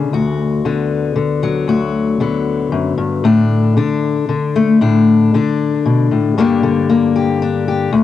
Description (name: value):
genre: folk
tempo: 115 BPM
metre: 3/4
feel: straight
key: D major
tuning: A4 = 440 Hz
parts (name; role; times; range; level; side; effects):
- fingerpicked steel-string acoustic guitar; solo; 0.0-8.0 s; D2 to G4; -13 LUFS; left 4 dB; cassette tape, analog delay
room: wet booth ambience, RT60 0.3 s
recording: home recording on cassette, faint mains hum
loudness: -13 LUFS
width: side -12 dB against mid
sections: 0.0-6.4 A section; 6.4-8.0 B section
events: none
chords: 0.1 D6; 3.2 Asus4; 6.4 Gm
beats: | 0.11 0.64 1.16 | 1.68 2.20 2.72 | 3.24 3.77 4.29 | 4.81 5.33 5.85 | 6.37 6.89 7.42 | 7.94